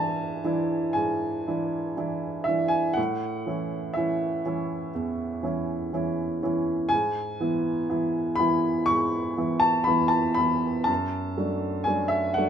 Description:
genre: classical, romantic nocturne for solo piano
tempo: 60 BPM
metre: 4/4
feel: rubato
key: unclear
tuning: A4 = 443 Hz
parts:
  - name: warm upright piano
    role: solo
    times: 0.0-12.5 s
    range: E2 to C#6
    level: -24 LUFS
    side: equal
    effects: none
room: moderate studio reverb, RT60 0.6 s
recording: minimal, uncompressed stereo recording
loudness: -24 LUFS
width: side -8 dB against mid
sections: 0.0-12.5 A section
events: none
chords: 0.0 E7/G#; 3.0 A; 6.9 E/G#; 10.9 D/F#

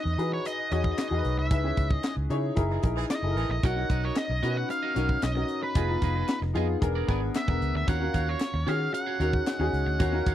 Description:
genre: polished 1980s jazz-funk pop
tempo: 113 BPM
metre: 4/4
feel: straight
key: Eb minor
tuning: A4 = 441 Hz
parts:
  - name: octave-fuzz lead guitar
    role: melody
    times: 0.0-10.3 s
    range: B4 to F#5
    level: -32 LUFS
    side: equal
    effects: distortion, slapback echo
  - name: warm grand piano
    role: accompaniment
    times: 0.0-10.3 s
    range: Cb4 to Bb5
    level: -30 LUFS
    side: left 2 dB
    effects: lush chorus
  - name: vintage muted fingered electric bass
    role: bass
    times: 0.1-10.3 s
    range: E1 to E3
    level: -29 LUFS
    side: equal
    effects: none
  - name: tight funk drum kit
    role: drums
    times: 0.1-10.3 s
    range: hi-hat, kick drum, snare drum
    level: -28 LUFS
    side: equal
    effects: none
  - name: group handclap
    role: percussion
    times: 1.0-9.6 s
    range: none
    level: -43 LUFS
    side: left 9 dB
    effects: none
  - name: warm horn section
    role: second line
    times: 2.7-3.5 s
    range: Fb3 to Ab4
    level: -35 LUFS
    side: right 5 dB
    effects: none
  - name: electric guitar at the edge of break-up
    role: riff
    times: 3.6-10.3 s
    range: F4 to F5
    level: -36 LUFS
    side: right 11 dB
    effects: lush chorus
room: little or no reverb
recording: dry, close 1970s-style studio recording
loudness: -25 LUFS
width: side -11 dB against mid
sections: 0.0-10.3 A section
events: band accent 1.5-3.6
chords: 0.0 Emaj7; 1.5 Dbm7; 2.6 Gb13; 3.6 Bmaj7; 5.8 Fm7b5; 6.8 E7#11; 7.9 Ebm9

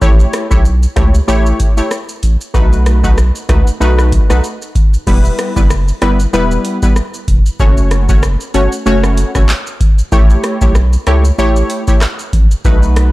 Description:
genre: dancehall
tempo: 95 BPM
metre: 4/4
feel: swing 56% on 16ths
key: unclear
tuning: A4 = 440 Hz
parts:
  - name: synth brass stab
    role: accompaniment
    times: 0.0-13.1 s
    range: G3 to C#5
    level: -16 LUFS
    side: left 1 dB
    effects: chorus, sidechain pumping
  - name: saturated sub bass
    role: bass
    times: 0.0-13.1 s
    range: E1 to C#2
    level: -12 LUFS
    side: equal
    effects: none
  - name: booming analog drum machine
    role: drums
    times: 0.0-13.1 s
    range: crash cymbal, handclaps, hi-hat, kick drum, rim click, shaker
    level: -13 LUFS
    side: equal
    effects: none
room: digital ambience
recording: dark, warm production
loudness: -10 LUFS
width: side -18 dB against mid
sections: 0.0-5.1 A section; 5.1-13.1 B section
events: none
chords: 0.0 A7; 2.5 B7; 5.1 Em; 7.6 F#m; 10.1 A7

